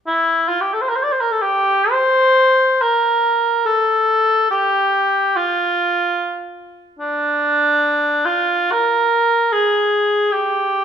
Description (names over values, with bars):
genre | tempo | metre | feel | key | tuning
classical, free, expressive piece for unaccompanied cor anglais | 58-76 BPM | 4/4 | rubato | G dorian | A4 = 440 Hz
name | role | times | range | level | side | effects
mellow cor anglais | solo | 0.1-10.8 s | D4 to D5 | -14 LUFS | equal | none
room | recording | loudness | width
moderate recital hall reverb, RT60 1.8 s | minimal, uncompressed stereo recording | -14 LUFS | side -8 dB against mid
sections
0.1-10.8 A section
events
none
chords
none